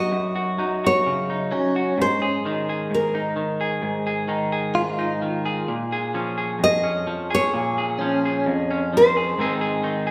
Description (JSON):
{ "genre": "acoustic folk-pop ballad", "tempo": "65 BPM", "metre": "4/4", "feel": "straight", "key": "unclear", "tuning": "A4 = 440 Hz", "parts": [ { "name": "nylon-string guitar", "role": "melody", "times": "0.0-10.1 s", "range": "Bb4 to Eb5", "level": "-24 LUFS", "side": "equal", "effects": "none" }, { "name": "electric guitar through a small old amp", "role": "accompaniment", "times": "0.0-10.1 s", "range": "F2 to Ab4", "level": "-26 LUFS", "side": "equal", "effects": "none" }, { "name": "direct-recorded clean electric guitar", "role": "arpeggios", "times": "1.5-9.0 s", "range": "Db4 to F4", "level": "-27 LUFS", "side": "equal", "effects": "tremolo" } ], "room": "wet scoring stage reverb, RT60 1.6 s", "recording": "recorded in a church or concert hall", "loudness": "-23 LUFS", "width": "mono", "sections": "0.0-10.1 A section", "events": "none", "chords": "0.0 Gb5; 2.0 Absus2; 5.7 Bbm7; 9.4 Ab", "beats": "0.14 1.06 | 1.99 2.91 3.83 4.76 | 5.68 6.61 7.53 8.46 | 9.39" }